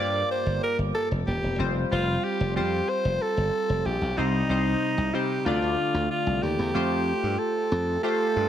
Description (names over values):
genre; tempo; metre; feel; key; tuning
pop; 93 BPM; 4/4; straight; unclear; A4 = 440 Hz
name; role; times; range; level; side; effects
raspy alto saxophone; melody; 0.0-8.5 s; Eb4 to D5; -27 LUFS; equal; ping-pong delay
chorused retro synth keys; accompaniment; 0.0-8.5 s; G2 to D5; -28 LUFS; left 1 dB; none
slap bass; bass; 0.0-8.5 s; Eb1 to C3; -27 LUFS; equal; none
room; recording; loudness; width
light reverb, studio reverb; none; -23 LUFS; side -10 dB against mid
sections
0.0-6.8 A section; 6.8-8.5 B section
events
none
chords
0.0 Gm7; 1.6 Fsus2; 4.2 Cm; 5.5 Dm; 6.8 Fadd9